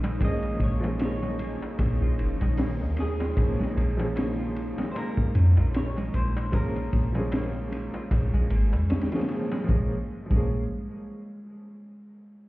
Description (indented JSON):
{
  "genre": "trip hop",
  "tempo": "76 BPM",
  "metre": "4/4",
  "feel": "swing 57% on 16ths",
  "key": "Bb minor",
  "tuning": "A4 = 439 Hz",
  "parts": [
    { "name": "clean electric guitar", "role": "melody", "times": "0.0-8.9 s", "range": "Ab4 to F5", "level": "-38 LUFS", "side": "right 1 dB", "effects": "tape echo" },
    { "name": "warm upright piano", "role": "accompaniment", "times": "0.0-10.6 s", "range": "F3 to Ab4", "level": "-33 LUFS", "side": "equal", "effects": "tremolo, tape echo" },
    { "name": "string machine, cellos", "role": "sustained chords", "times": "0.0-9.7 s", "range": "Eb4 to Eb5", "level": "-40 LUFS", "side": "left 1 dB", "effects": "phaser, ensemble chorus, vintage 12-bit sampler grit" },
    { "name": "concert harp", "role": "arpeggios", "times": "0.0-10.7 s", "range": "Ab3 to F4", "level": "-35 LUFS", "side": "right 1 dB", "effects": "tape echo" },
    { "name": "soft 808-style bass", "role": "bass", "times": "0.0-10.7 s", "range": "F1 to F2", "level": "-26 LUFS", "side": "equal", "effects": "none" },
    { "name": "crunchy breakbeat drum kit", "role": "drums", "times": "0.0-10.4 s", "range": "hi-hat, kick drum, ride cymbal, snare drum", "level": "-30 LUFS", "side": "equal", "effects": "none" },
    { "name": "darbuka", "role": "percussion", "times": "0.0-9.7 s", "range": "none", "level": "-45 LUFS", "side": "left 2 dB", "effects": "none" },
    { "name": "wind-like tuned noise texture", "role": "texture", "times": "0.0-9.7 s", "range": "Db4 to Bb4", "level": "-45 LUFS", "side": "left 4 dB", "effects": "none" }
  ],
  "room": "studio reverb",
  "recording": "heard muffled through a wall, stone room reverb, EQ",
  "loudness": "-24 LUFS",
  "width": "side -18 dB against mid",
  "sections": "0.0-9.7 A section; 9.7-12.5 B section",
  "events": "none",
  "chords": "0.0 Bbm7",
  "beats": "| 0.21 1.00 1.79 2.58 | 3.37 4.16 4.95 5.74 | 6.53 7.32 8.11 8.90 | 9.69 10.48"
}